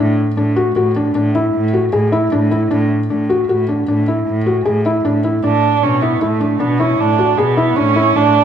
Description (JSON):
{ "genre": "contemporary instrumental, chamber music in an uneven meter", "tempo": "154 BPM", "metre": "7/4", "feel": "straight", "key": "unclear", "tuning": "A4 = 437 Hz", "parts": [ { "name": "felt-muted upright piano", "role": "arpeggios", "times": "0.0-8.4 s", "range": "D4 to G#4", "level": "-15 LUFS", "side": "left 1 dB", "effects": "none" }, { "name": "warm cello", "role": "bass", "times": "0.0-8.3 s", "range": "A2 to B2", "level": "-18 LUFS", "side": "right 1 dB", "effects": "none" }, { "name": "warm viola", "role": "second line", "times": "5.5-8.4 s", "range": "A3 to D4", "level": "-15 LUFS", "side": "right 7 dB", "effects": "none" } ], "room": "moderate recital hall reverb, RT60 1.3 s", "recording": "dark, warm production", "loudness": "-13 LUFS", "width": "side -8 dB against mid", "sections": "0.0-8.4 A section", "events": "none", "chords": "0.0 D/A; 5.4 E7sus4/A" }